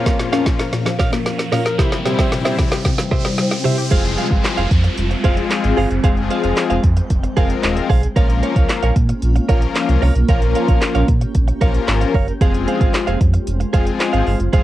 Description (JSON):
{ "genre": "dance-pop", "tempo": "113 BPM", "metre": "4/4", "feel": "straight", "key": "F minor", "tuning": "A4 = 440 Hz", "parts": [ { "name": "big bright polysynth", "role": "accompaniment", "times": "0.0-14.6 s", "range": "E3 to Bb4", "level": "-22 LUFS", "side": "left 7 dB", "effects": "lush chorus, sidechain pumping, cassette tape" }, { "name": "granular cloud pad", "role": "sustained chords", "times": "0.0-14.6 s", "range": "Bb2 to G5", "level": "-25 LUFS", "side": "equal", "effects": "built-in reverb, phaser, sidechain pumping, cassette tape" }, { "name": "direct-recorded clean electric guitar", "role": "riff", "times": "0.0-14.6 s", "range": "G4 to F5", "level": "-23 LUFS", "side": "right 7 dB", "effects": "wide subtle chorus, cassette tape" }, { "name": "riser and downlifter", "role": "sound effects", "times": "0.1-8.2 s", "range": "none", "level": "-29 LUFS", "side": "right 1 dB", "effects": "none" }, { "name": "hollow square pluck", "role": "arpeggios", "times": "0.1-3.9 s", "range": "Bb2 to Bb4", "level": "-22 LUFS", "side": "left 4 dB", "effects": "chorus, sidechain pumping, cassette tape, analog delay" }, { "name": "deep house drum kit", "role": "drums", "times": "0.1-14.6 s", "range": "crash cymbal, handclaps, hi-hat, kick drum, snare drum", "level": "-17 LUFS", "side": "equal", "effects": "cassette tape" }, { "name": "sub bass with octave", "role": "bass", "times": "3.9-14.6 s", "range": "Eb1 to Bb2", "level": "-18 LUFS", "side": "equal", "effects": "sidechain pumping" } ], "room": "light reverb", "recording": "home recording on cassette", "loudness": "-14 LUFS", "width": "side -14 dB against mid", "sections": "0.0-3.9 A section; 3.9-14.6 B section", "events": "build-up 0.0-3.9; drum fill 0.0-3.9; riser 0.1-3.9; drop 3.9-14.6", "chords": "0.0 Bbm; 1.8 C; 3.9 Fm; 8.2 Bbm; 12.4 Fm" }